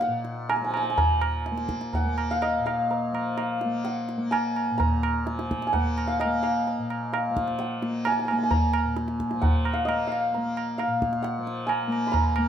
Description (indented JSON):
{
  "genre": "indian classical, Hindustani",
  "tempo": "124-135 BPM",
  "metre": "4/4",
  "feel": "straight",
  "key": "Bb raga bhairavi",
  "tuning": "A4 = 442 Hz",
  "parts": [
    { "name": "santur", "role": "melody", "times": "0.0-12.5 s", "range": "Eb5 to Cb6", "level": "-27 LUFS", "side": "equal", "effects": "none" },
    { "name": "tanpura", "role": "drone", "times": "0.0-12.5 s", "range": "Bb2 to Bb3", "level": "-30 LUFS", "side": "left 2 dB", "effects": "none" },
    { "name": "tabla", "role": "percussion", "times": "0.0-12.5 s", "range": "none", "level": "-28 LUFS", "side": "right 1 dB", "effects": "none" }
  ],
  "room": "moderate small room reverb, RT60 0.6 s",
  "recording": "none",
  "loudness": "-24 LUFS",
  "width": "side -9 dB against mid",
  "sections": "1.0-12.5 A section",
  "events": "speeding up 0.0-12.5",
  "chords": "none"
}